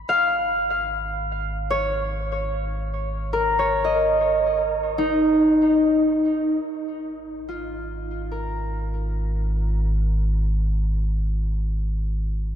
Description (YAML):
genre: ambient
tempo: 74 BPM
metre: 4/4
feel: straight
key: unclear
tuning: A4 = 440 Hz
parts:
  - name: warm sub bass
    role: bass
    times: 0.0-12.6 s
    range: G#1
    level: -26 LUFS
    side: equal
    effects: none
  - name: concert harp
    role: arpeggios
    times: 0.1-10.4 s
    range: D#4 to E#5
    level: -21 LUFS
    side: equal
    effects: ping-pong delay
room: wet cathedral reverb, RT60 6.2 s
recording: in a vast, echoing space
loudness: -20 LUFS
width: side -9 dB against mid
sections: 0.0-6.7 A section; 6.7-12.6 B section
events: fade-out on sub bass 0.0-6.7; fade-in on harp 6.7-12.6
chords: 0.1 A#m/G#; 6.7 G#sus2